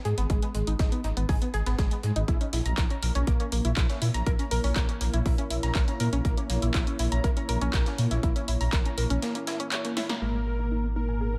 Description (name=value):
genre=melodic techno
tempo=121 BPM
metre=4/4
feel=straight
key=unclear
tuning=A4 = 444 Hz
part: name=tight sequenced synth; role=arpeggios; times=0.1-11.4 s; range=G#3 to A#5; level=-35 LUFS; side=equal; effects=chorus, sidechain pumping, dub echo
part: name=dark detuned saw bass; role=bass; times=0.1-11.4 s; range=G#1 to A#2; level=-30 LUFS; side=equal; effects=sidechain pumping
part: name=breakbeat sampler-style drum kit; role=drums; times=0.1-10.1 s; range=hi-hat, snare drum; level=-46 LUFS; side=equal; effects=none
part: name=punchy analog drum machine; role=drums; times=0.2-10.2 s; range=handclaps, hi-hat, snare drum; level=-37 LUFS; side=equal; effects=sidechain pumping on hats, low-pass filter on hats, low-pass filter on snare
part: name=electronic kick drum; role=drums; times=0.3-8.8 s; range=none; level=-28 LUFS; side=equal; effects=none
part: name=dark analog pad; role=sustained chords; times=3.9-11.4 s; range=A#3 to C#5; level=-39 LUFS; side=equal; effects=chorus, sidechain pumping
part: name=unison lead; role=melody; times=10.2-11.4 s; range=A#3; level=-35 LUFS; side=equal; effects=sidechain pumping, tape echo
part: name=big bright polysynth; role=second line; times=10.2-11.4 s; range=A#4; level=-39 LUFS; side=equal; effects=chorus, sidechain pumping, dub echo
room=light reverb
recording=echo-heavy mix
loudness=-27 LUFS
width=mono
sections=0.0-10.2 A section; 10.2-11.4 B section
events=break 9.2-10.2; drum fill 10.0; filter sweep on synth arpeggio sound 10.2-11.4; filter sweep on analog synth lead 10.2-11.4; filter sweep on analog polysynth 10.2-11.4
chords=0.0 G#m; 2.3 A#dim; 10.2 G#m